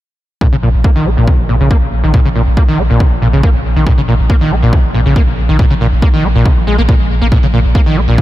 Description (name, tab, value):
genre	driving peak-time techno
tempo	139 BPM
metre	4/4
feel	straight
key	Bb minor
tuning	A4 = 439 Hz
part	overdriven acid bass	riff	0.4-8.2 s	Bb2 to Bb3	-13 LUFS	equal	ensemble chorus, sidechain pumping, ping-pong delay
part	electronic kick drum	drums	0.4-8.2 s	none	-12 LUFS	equal	none
part	saturated sub bass	bass	0.5-8.2 s	Bb1	-14 LUFS	equal	overdrive, sidechain pumping, low-pass filter
room	light reverb, digital ambience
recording	none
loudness	-9 LUFS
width	side -15 dB against mid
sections	0.4-8.2 A section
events	filter sweep on acid bass 0.4-8.2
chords	none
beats	| 0.41 0.84 1.28 1.71 | 2.14 2.57 3.00 3.43 | 3.87 4.30 4.73 5.16 | 5.59 6.02 6.46 6.89 | 7.32 7.75 8.18